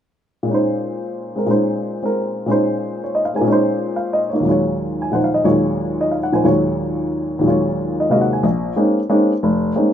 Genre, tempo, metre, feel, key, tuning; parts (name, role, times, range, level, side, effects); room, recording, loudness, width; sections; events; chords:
jazz; 181 BPM; 3/4; swing 65% on 8ths; Bb minor; A4 = 440 Hz
warm upright piano; solo; 0.4-9.9 s; F1 to Ab5; -16 LUFS; equal
moderate club reverb, RT60 0.8 s; minimal, uncompressed stereo recording; -16 LUFS; side -9 dB against mid
0.5-8.4 A section; 8.4-9.9 B section
0.5 Bbm11; 4.5 Ebm11; 8.4 Bbm11